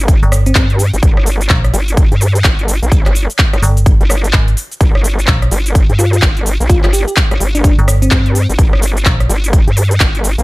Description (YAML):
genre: bass house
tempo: 127 BPM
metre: 4/4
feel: swing 61% on 16ths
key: G phrygian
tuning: A4 = 441 Hz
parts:
  - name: vowel-sweep wobble bass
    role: bass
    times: 0.0-10.4 s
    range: G1 to G2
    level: -14 LUFS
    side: equal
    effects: chorus, tube saturation, sidechain pumping
  - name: big-room dance drum kit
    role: drums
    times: 0.0-10.4 s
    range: handclaps, hi-hat, rim click, shaker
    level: -18 LUFS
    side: equal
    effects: none
  - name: downlifter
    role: sound effects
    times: 0.0-1.0 s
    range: none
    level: barely audible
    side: none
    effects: none
  - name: electronic kick drum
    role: drums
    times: 0.1-10.1 s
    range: none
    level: -11 LUFS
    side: equal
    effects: none
  - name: metallic FM bass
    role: bass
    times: 0.2-9.3 s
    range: G1 to Bb1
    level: -12 LUFS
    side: equal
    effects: sidechain pumping
  - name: bell-like FM electric piano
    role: melody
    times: 0.5-0.6, 6.0-8.5 s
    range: C4 to G4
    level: -20 LUFS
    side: left 1 dB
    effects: chorus, dub echo
room: digital ambience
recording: none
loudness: -9 LUFS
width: side -21 dB against mid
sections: 0.0-10.4 A section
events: none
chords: 0.0 G5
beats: 0.08 0.56 | 1.03 1.50 1.97 2.44 | 2.92 3.39 3.86 4.33 | 4.81 5.28 5.75 6.22 | 6.70 7.17 7.64 8.11 | 8.59 9.06 9.53 10.00